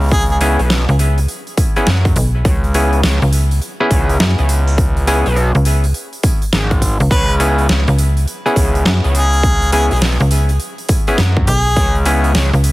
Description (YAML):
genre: glitch hop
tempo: 103 BPM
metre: 4/4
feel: swing 63% on 16ths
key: C# minor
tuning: A4 = 438 Hz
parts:
  - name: overdriven clav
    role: stabs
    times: 0.0-12.3 s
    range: B3 to G#4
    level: -20 LUFS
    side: equal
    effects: sidechain pumping, digital delay
  - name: gritty driven synth bass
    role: bass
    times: 0.0-12.5 s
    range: G#1 to F#2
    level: -14 LUFS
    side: equal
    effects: overdrive
  - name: dubstep drum kit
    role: drums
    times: 0.0-12.7 s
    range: hi-hat, rim click, snare drum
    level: -21 LUFS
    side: equal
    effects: none
  - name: clear harmonica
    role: melody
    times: 0.1-0.4, 7.1-12.0 s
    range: G#4 to B4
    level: -21 LUFS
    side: equal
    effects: digital delay
  - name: electronic kick drum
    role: drums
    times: 0.1-11.9 s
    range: none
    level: -16 LUFS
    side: equal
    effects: none
  - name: slap-like FM bass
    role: bass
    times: 0.9-12.7 s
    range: B1 to F#2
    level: -12 LUFS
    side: equal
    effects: none
room: little or no reverb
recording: heavily compressed radio sound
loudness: -12 LUFS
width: side -19 dB against mid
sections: 0.0-12.7 A section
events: none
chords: 0.0 C#m7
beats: | 0.12 0.70 1.28 1.87 | 2.45 3.03 3.62 4.20 | 4.78 5.36 5.95 6.53 | 7.11 7.69 8.28 8.86 | 9.44 10.02 10.61 11.19 | 11.77 12.35